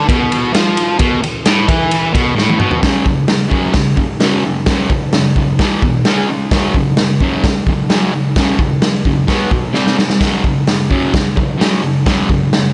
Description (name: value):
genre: garage rock duo or trio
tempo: 130 BPM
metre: 4/4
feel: straight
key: unclear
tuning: A4 = 437 Hz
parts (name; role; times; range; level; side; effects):
- fuzz guitar; riff; 0.0-12.7 s; E2 to C#4; -17 LUFS; equal; distortion
- raw garage drum kit; drums; 0.1-12.6 s; hi-hat, kick drum, ride cymbal, snare drum, splash cymbal, toms; -17 LUFS; equal; none
room: light reverb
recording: nothing above 10.3 kHz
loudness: -14 LUFS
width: mono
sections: 0.0-2.8 A section; 2.8-12.7 B section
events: drum fill 2.4-2.8, 9.7-10.2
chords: 0.0 Asus2; 2.8 F#5; 5.6 E5; 6.0 C#5; 6.5 F#5; 9.3 B5; 9.7 C5; 10.2 F#5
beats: 0.08 0.54 | 1.00 1.46 1.91 2.37 | 2.83 3.29 3.75 4.21 | 4.67 5.13 5.59 6.05 | 6.51 6.97 7.43 7.89 | 8.36 8.82 9.28 9.74 | 10.21 10.67 11.13 11.60 | 12.06 12.52